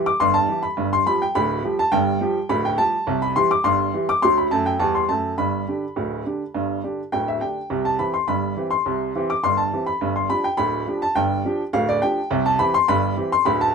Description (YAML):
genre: ragtime piano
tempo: 104 BPM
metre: 2/4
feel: straight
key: C major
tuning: A4 = 440 Hz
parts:
  - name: clear upright piano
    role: solo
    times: 0.0-13.7 s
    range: D1 to D6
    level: -19 LUFS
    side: equal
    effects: none
room: moderate booth ambience, RT60 0.2 s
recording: minimal, uncompressed stereo recording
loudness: -19 LUFS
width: side -5 dB against mid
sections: 0.0-13.7 A section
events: none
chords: 0.0 C; 0.8 G5; 3.1 C; 4.2 D; 5.4 G; 7.7 C; 10.0 G5; 12.3 C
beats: 0.20 | 0.77 1.35 | 1.92 2.50 | 3.07 3.65 | 4.22 4.80 | 5.38 5.96 | 6.54 7.12 | 7.70 8.28 | 8.86 9.43 | 10.01 10.58 | 11.15 11.73 | 12.30 12.88 | 13.45